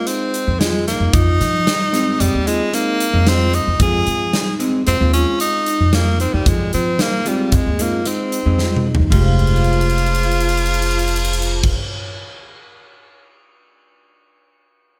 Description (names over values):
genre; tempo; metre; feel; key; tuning
progressive instrumental, band music in an uneven meter; 113 BPM; 5/4; straight; F minor; A4 = 437 Hz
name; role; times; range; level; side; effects
bright tenor saxophone; melody; 0.0-11.7 s; G3 to Ab4; -23 LUFS; equal; none
hollow-body jazz guitar; accompaniment; 0.0-11.7 s; Ab3 to G4; -27 LUFS; equal; none
vibraphone with soft mallets; arpeggios; 0.1-11.8 s; C4 to F5; -27 LUFS; equal; slapback echo
big rock drum kit; drums; 0.1-13.2 s; crash cymbal, hi-hat, kick drum, ride cymbal, snare drum, toms; -23 LUFS; equal; none
upright bass; bass; 0.5-11.7 s; F1 to F3; -20 LUFS; equal; none
room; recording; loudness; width
light reverb, studio ambience; none; -17 LUFS; mono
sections
0.0-9.1 A section; 9.1-11.8 B section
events
drum fill 8.6-9.1, 9.4-11.6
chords
0.0 Ab; 9.1 Fm7